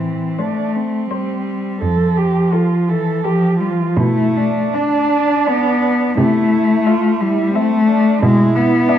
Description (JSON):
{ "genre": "classical, lyrical piece for cello ensemble", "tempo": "73-90 BPM", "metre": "3/4", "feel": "rubato", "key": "A minor", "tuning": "A4 = 440 Hz", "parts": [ { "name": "muted cello", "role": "second line", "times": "0.0-9.0 s", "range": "C4 to A4", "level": "-20 LUFS", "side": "right 6 dB", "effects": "none" }, { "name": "muted cello", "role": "accompaniment", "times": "0.0-9.0 s", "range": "E3 to D4", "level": "-15 LUFS", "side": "left 2 dB", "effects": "none" }, { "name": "muted cello", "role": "bass", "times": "0.0-8.8 s", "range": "F2 to C3", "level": "-20 LUFS", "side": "right 2 dB", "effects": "none" }, { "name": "muted cello", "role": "melody", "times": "0.4-9.0 s", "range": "A4 to E5", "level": "-26 LUFS", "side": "left 7 dB", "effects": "none" } ], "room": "wet recital hall reverb, RT60 1.7 s", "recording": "dark, warm production", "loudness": "-14 LUFS", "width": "side -10 dB against mid", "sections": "0.0-9.0 A section", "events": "none", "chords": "0.0 Am; 1.8 F; 4.0 Bm7; 6.2 Am/C; 8.2 E5/B" }